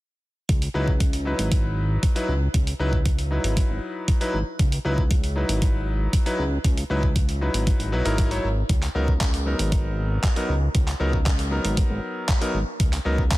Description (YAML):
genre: nu-disco, nu disco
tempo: 117 BPM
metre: 4/4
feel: straight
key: C# dorian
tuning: A4 = 442 Hz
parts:
  - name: fat analog bass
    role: bass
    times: 0.5-13.4 s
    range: G#1 to C#2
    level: -24 LUFS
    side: equal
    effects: sidechain pumping
  - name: dusty soul sampler-style drum kit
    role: drums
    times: 0.5-13.4 s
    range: handclaps, hi-hat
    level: -31 LUFS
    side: right 1 dB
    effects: small room ambience, soft clipping on snare
  - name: electronic kick drum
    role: drums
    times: 0.5-13.4 s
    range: none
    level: -21 LUFS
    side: equal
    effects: overdrive, small room ambience
  - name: bright electric grand piano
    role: accompaniment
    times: 0.7-13.2 s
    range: F#3 to C#5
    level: -28 LUFS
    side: left 1 dB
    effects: vintage 12-bit sampler grit, digital delay
room: digital ambience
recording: dense, heavily limited modern master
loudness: -20 LUFS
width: side -18 dB against mid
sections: 0.5-13.4 A section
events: none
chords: 0.5 C#m11; 8.7 Bmaj7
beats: | 0.49 1.00 1.52 2.03 | 2.54 3.06 3.57 4.08 | 4.59 5.11 5.62 6.13 | 6.65 7.16 7.67 8.18 | 8.70 9.21 9.72 10.24 | 10.75 11.26 11.77 12.29 | 12.80 13.31